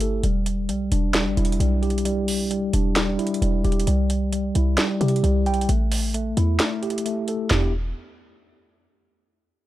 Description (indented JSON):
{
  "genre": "hip hop, trap",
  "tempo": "132 BPM",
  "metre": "4/4",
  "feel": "half-time",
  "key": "E minor",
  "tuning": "A4 = 441 Hz",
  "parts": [
    { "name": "mellow tine electric piano", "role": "accompaniment", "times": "0.0-7.7 s", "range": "G3 to G5", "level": "-24 LUFS", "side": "equal", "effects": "medium stereo tremolo, low-pass filter" },
    { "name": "short 808-style bass", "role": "bass", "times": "0.0-7.9 s", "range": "E1 to C3", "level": "-22 LUFS", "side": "equal", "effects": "none" },
    { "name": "trap drum kit", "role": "drums", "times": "0.0-7.6 s", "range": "handclaps, hi-hat, snare drum, toms", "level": "-26 LUFS", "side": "right 1 dB", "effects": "none" }
  ],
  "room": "little or no reverb",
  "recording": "none",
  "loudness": "-20 LUFS",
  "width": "side -15 dB against mid",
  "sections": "0.2-7.5 A section; 7.5-9.3 B section",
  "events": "break 6.6-7.5",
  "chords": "0.2 Em7; 3.9 C; 5.7 A5; 7.5 Em7"
}